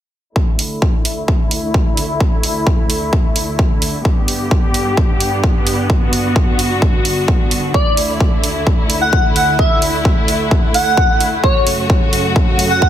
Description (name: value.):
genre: EDM, festival progressive house.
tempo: 130 BPM.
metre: 4/4.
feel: straight.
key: D major.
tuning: A4 = 440 Hz.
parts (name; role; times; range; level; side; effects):
rich studio string section; sustained chords; 0.4-12.9 s; D2 to G4; -19 LUFS; equal; sidechain pumping, low-pass filter.
electronic kick drum; drums; 0.4-12.9 s; none; -14 LUFS; equal; none.
electronic hi-hat; drums; 0.6-12.7 s; none; -21 LUFS; right 2 dB; none.
airy dreamy lead; melody; 7.7-12.9 s; C#5 to F#5; -17 LUFS; equal; chorus, digital delay.
room: light reverb.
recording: heavily compressed radio sound.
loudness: -12 LUFS.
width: side -11 dB against mid.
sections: 0.4-12.9 A section.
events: filter sweep on string section 0.4-12.9.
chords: 0.4 Dsus2; 4.1 G; 7.7 Dsus2; 11.4 F#m.